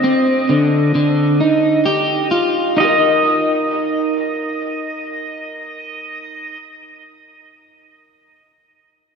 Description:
dream pop; 66 BPM; 4/4; straight; Eb major; A4 = 440 Hz
pedal steel guitar; melody; 0.0-6.6 s; Eb5; -21 LUFS; equal; shimmer reverb, tape echo
electric guitar at the edge of break-up; arpeggios; 0.0-6.7 s; D3 to Eb5; -16 LUFS; equal; wide subtle chorus, shimmer reverb, tape echo
wet lush hall reverb, RT60 2.7 s; dreamy mix soaked in reverb; -14 LUFS; side -6 dB against mid
0.0-2.8 A section; 2.8-6.4 B section
0.0 Ebmaj7; 2.8 Eb5
0.03 0.94 1.85 | 2.76 3.67 4.58 5.48

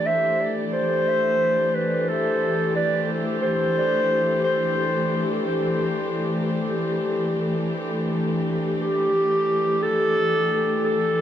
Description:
ambient; free time; A minor; A4 = 440 Hz
dark clarinet; melody; 0.0-11.2 s; G4 to E5; -22 LUFS; equal; vintage 12-bit sampler grit, dub echo
dark studio string section; sustained chords; 0.0-11.2 s; E3 to A4; -24 LUFS; left 1 dB
moderate echo chamber reverb, RT60 1.9 s; echo-heavy mix; -20 LUFS; side -10 dB against mid
0.0-11.2 A section
0.0 Am7
free time

